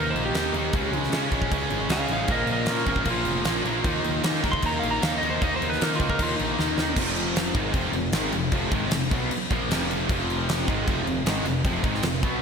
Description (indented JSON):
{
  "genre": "hard rock",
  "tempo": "154 BPM",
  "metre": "4/4",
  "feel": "straight",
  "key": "F minor",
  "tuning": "A4 = 440 Hz",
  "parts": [
    { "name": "lightly driven lead guitar", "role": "melody", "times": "0.0-7.0 s", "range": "Db4 to C6", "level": "-29 LUFS", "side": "right 1 dB", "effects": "slapback echo, digital delay" },
    { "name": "cranked stack guitar", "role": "riff", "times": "0.0-12.4 s", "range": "F2 to Eb4", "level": "-31 LUFS", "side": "left 10 dB", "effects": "overdrive, phaser" },
    { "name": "distorted electric guitar", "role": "riff", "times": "0.0-12.4 s", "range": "F2 to Eb4", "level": "-32 LUFS", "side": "equal", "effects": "overdrive, slapback echo" },
    { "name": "heavy high-gain guitar", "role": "riff", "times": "0.0-12.4 s", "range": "F2 to Eb4", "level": "-30 LUFS", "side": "right 9 dB", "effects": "distortion, slapback echo" },
    { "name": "fuzz picked electric bass", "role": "bass", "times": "0.0-12.4 s", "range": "F1 to Eb3", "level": "-31 LUFS", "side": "equal", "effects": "overdrive" },
    { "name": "huge arena drum kit", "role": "drums", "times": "0.2-12.3 s", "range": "crash cymbal, kick drum, snare drum", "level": "-27 LUFS", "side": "equal", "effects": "none" }
  ],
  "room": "moderate lush hall reverb, RT60 2.2 s",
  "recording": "big arena sound",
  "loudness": "-22 LUFS",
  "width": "side -6 dB against mid",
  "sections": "0.0-7.0 A section; 7.0-12.4 B section",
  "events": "lead electric guitar solo 0.0-7.0; drum fill 6.6-7.0",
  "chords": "0.0 Eb; 0.7 Db5; 2.3 Bbm; 3.9 Eb5; 7.0 Fm"
}